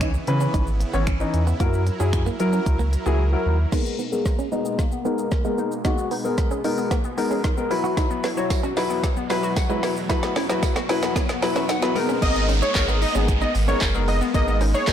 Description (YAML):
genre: dance-pop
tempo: 113 BPM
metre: 4/4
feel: straight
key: G# minor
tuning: A4 = 440 Hz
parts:
  - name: warm concert grand piano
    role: accompaniment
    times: 0.0-14.9 s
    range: E3 to C#5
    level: -25 LUFS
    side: left 3 dB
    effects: sidechain pumping, low-pass filter
  - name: supersaw pad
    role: sustained chords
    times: 0.0-14.9 s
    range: E2 to A#4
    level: -33 LUFS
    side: right 1 dB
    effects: sidechain pumping, low-pass filter
  - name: direct-recorded clean electric guitar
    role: riff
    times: 0.0-14.8 s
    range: G#3 to F#4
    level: -31 LUFS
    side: right 8 dB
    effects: lush chorus, low-pass filter
  - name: warm sub bass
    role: bass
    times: 0.0-3.7, 12.2-14.9 s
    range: F#1 to F#3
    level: -22 LUFS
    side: equal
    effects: sidechain pumping
  - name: deep house drum kit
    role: drums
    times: 0.0-14.9 s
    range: crash cymbal, finger snaps, handclaps, hi-hat, kick drum, shaker, snare drum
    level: -25 LUFS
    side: equal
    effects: soft clipping on snare
  - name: hollow square pluck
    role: arpeggios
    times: 3.7-14.9 s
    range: F#3 to F#5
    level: -31 LUFS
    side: left 6 dB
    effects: chorus, sidechain pumping, low-pass filter, ping-pong delay
  - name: riser and downlifter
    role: sound effects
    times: 6.6-14.9 s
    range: none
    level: -33 LUFS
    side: right 1 dB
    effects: none
  - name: tambourine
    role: percussion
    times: 8.0-14.9 s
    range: none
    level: -42 LUFS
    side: right 12 dB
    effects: none
  - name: wide unison lead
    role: melody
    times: 12.2-14.9 s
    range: C#5 to D#5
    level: -25 LUFS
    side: equal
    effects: none
room: light reverb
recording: blown-out, overdriven recording, overdrive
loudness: -20 LUFS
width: side -9 dB against mid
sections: 0.0-3.7 A section; 3.7-12.2 B section; 12.2-14.9 C section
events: silent gap 3.2-3.7; build-up 3.7-12.2; drum fill 3.7-12.2; filter sweep 3.7-12.2; drop 12.2-14.9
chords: 0.0 C#m7; 1.6 F#7; 3.7 G#madd9; 7.7 Esus2; 12.0 G#madd9